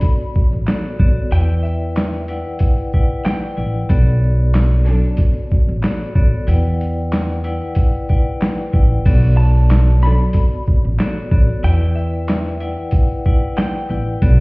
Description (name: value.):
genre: hip hop, boom-bap hip-hop.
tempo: 93 BPM.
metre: 4/4.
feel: swing 55% on 16ths.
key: B minor.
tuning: A4 = 440 Hz.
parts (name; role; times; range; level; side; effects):
clean electric guitar; melody; 0.0-3.5, 9.4-13.9 s; E5 to B5; -30 LUFS; left 1 dB; high-pass filter, low-pass filter, ping-pong delay.
vibraphone with hard mallets; accompaniment; 0.0-14.4 s; B3 to G5; -25 LUFS; left 2 dB; cassette tape, high-pass filter, low-pass filter.
boom bap sampler-style drum kit; drums; 0.0-14.4 s; crash cymbal, handclaps, hi-hat, kick drum, shaker, snare drum; -16 LUFS; equal; none.
upright bass; bass; 0.5-14.4 s; A1 to E2; -16 LUFS; equal; none.
tambourine; percussion; 0.7-8.6 s; none; -55 LUFS; right 5 dB; none.
warm studio string section; stabs; 4.9-5.1, 10.0-10.3 s; F#3 to A4; -26 LUFS; right 1 dB; high-pass filter, low-pass filter, ping-pong delay.
room: studio reverb.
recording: heard muffled through a wall, stone room reverb, vinyl crackle, EQ.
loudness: -14 LUFS.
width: side -26 dB against mid.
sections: 0.0-9.1 A section; 9.1-14.4 A section.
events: none.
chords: 0.0 Bm7; 1.3 Em7; 3.9 Bm7; 6.5 Em7; 9.1 Bm7; 11.6 Em7.